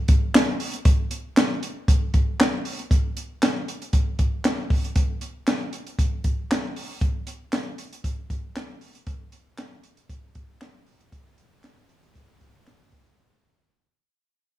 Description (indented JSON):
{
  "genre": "funk",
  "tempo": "117 BPM",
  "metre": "4/4",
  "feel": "straight",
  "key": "none",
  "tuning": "none",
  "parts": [
    { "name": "compact cocktail drum kit", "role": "drums", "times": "0.1-13.2 s", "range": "handclaps, hi-hat, kick drum, snare drum", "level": "-21 LUFS", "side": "equal", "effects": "none" }
  ],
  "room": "light reverb",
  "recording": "none",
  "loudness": "-22 LUFS",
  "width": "side -14 dB against mid",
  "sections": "0.0-13.2 A section",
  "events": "fade-out 0.0-13.2",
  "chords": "none"
}